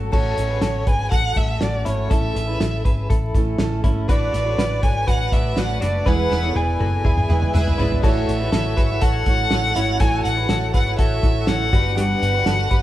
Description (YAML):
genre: jangly indie pop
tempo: 122 BPM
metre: 4/4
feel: straight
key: A major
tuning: A4 = 440 Hz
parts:
  - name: fingerpicked steel-string acoustic guitar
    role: accompaniment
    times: 0.0-12.8 s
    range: E3 to C#5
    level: -27 LUFS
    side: right 3 dB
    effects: none
  - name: direct-recorded clean electric guitar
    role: arpeggios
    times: 0.0-12.8 s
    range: C#4 to C#5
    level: -29 LUFS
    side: left 3 dB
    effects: tremolo
  - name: vintage muted fingered electric bass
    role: bass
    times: 0.0-12.8 s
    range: E1 to A1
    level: -23 LUFS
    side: equal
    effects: none
  - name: dark violin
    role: melody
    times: 0.1-12.8 s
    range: C#5 to G#5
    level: -24 LUFS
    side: equal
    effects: none
  - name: cloth-damped thuddy drum kit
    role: drums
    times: 0.1-12.8 s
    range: crash cymbal, hi-hat, kick drum, snare drum, toms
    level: -21 LUFS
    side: equal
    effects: none
  - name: chorused retro synth keys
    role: accompaniment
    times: 4.1-12.8 s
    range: D4 to B5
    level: -30 LUFS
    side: equal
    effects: none
room: moderate studio reverb, RT60 0.9 s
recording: band playing live in one room, vinyl crackle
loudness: -17 LUFS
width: side -14 dB against mid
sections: 0.1-8.0 A section; 8.0-12.8 B section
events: drum fill 6.1-8.0; synth keys fill 7.0-8.0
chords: 0.1 F#m; 2.1 A; 4.1 Bm; 6.1 E; 8.0 A6; 11.7 Gmaj7